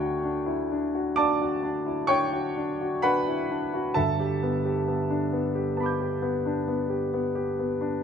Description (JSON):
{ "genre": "classical, impressionist solo piano", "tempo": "66 BPM", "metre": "5/4", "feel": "rubato", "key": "D major", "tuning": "A4 = 440 Hz", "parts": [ { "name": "clear concert grand piano", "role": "solo", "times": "0.0-8.0 s", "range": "G1 to G6", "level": "-24 LUFS", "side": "equal", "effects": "none" } ], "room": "moderate recital hall reverb, RT60 1.7 s", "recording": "close, detailed microphones", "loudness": "-24 LUFS", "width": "side -7 dB against mid", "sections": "0.0-8.0 A section", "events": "none", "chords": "0.0 Dmaj9; 4.0 Gadd9", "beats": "0.25 1.18 2.09 3.03 | 3.96 4.87 5.77 6.67 7.58" }